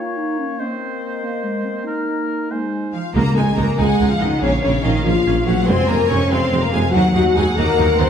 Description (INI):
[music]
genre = cinematic, heroic adventure film score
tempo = 95 BPM (dotted quarters)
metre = 6/8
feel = straight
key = Db major from 3.2 s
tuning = A4 = 438 Hz
[part]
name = dark clarinet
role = second line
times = 0.0-2.9 s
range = Ab3 to F4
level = -26 LUFS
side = right 2 dB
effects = none
[part]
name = mellow hollow concert flute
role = second line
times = 0.0-2.9 s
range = Eb5 to Ab5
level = -33 LUFS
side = left 3 dB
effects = none
[part]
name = warm oboe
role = second line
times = 0.0-2.9 s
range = Bb4 to Db5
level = -28 LUFS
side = left 1 dB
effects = none
[part]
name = mellow French horn section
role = sustained chords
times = 0.0-8.1 s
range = Ab3 to Db5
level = -21 LUFS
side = left 4 dB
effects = none
[part]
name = rich symphonic violin section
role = second line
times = 2.9-8.1 s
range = Db5 to Db6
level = -26 LUFS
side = left 2 dB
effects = none
[part]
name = rich symphonic cello section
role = bass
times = 2.9-8.1 s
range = Db3 to Db4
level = -21 LUFS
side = right 2 dB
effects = none
[part]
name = rich symphonic viola section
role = accompaniment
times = 3.2-8.1 s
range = Gb3 to Eb4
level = -25 LUFS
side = right 1 dB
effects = none
[part]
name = mellow tuba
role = bass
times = 3.2-8.1 s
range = F1 to Eb2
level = -23 LUFS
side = right 2 dB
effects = none
[part]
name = rich symphonic double bass section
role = bass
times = 3.2-8.1 s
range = Bb1 to F2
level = -21 LUFS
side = right 2 dB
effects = none
[part]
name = timpani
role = percussion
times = 3.2-3.8 s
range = Db3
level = -22 LUFS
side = left 1 dB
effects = none
[part]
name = rich symphonic violin section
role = melody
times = 3.8-8.1 s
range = F5 to Ab5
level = -26 LUFS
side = left 2 dB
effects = none
[sound]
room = wet recital hall reverb, RT60 1.3 s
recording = heard from further back in the room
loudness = -16 LUFS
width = side -8 dB against mid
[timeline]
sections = 0.0-3.2 A section; 3.2-8.1 B section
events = none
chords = 0.0 Eb7(no3)/Bb; 2.5 Ab; 3.2 Dbsus2; 4.4 Bbm; 5.7 Fm; 6.9 Ebm